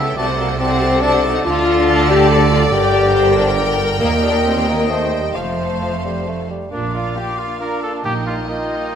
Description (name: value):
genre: quick classical-period movement for symphony orchestra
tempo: 138 BPM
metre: 3/4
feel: rubato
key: Bb major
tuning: A4 = 439 Hz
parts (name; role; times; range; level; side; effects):
- clear studio violin section; melody; 0.0-9.0 s; Eb5 to A5; -27 LUFS; left 4 dB; none
- mellow clarinet; second line; 0.0-9.0 s; Eb4 to C5; -28 LUFS; left 2 dB; none
- mellow large flute ensemble; second line; 0.0-9.0 s; D5 to Bb5; -28 LUFS; right 1 dB; none
- mellow oboe; second line; 0.0-9.0 s; C5 to G5; -26 LUFS; right 2 dB; none
- rich studio violin section; second line; 0.0-9.0 s; Bb3 to D5; -28 LUFS; left 2 dB; none
- mellow bassoon; accompaniment; 0.0-9.0 s; Bb2 to Bb3; -25 LUFS; right 2 dB; none
- rich studio viola section; accompaniment; 0.0-9.0 s; Bb3 to Eb5; -26 LUFS; left 2 dB; none
- mellow French horn section; sustained chords; 0.0-9.0 s; G3 to A4; -19 LUFS; left 3 dB; none
- rich studio cello section; bass; 0.0-8.4 s; Eb2 to D3; -22 LUFS; right 3 dB; none
- rich studio double bass section; bass; 0.0-8.4 s; F1 to Eb2; -23 LUFS; right 3 dB; none
- clear trumpet; stabs; 6.7-9.0 s; D4 to Bb4; -25 LUFS; right 1 dB; none
- timpani; percussion; 8.0-8.7 s; Bb2; -33 LUFS; right 1 dB; none
room: wet recital hall reverb, RT60 1.7 s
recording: none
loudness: -14 LUFS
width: side -8 dB against mid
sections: 0.0-6.7 A section; 6.7-9.0 B section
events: none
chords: 0.2 D7/C; 1.5 Dm; 2.7 Gm; 4.0 Eb; 4.9 Cm/Eb; 5.4 F; 6.7 Bb; 8.0 Eb/Bb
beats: | 0.17 0.60 1.03 | 1.45 1.87 2.30 | 2.72 3.15 3.58 | 4.01 4.46 4.90 | 5.35 5.82 6.28 | 6.72 7.17 7.61 | 8.05 8.48 8.91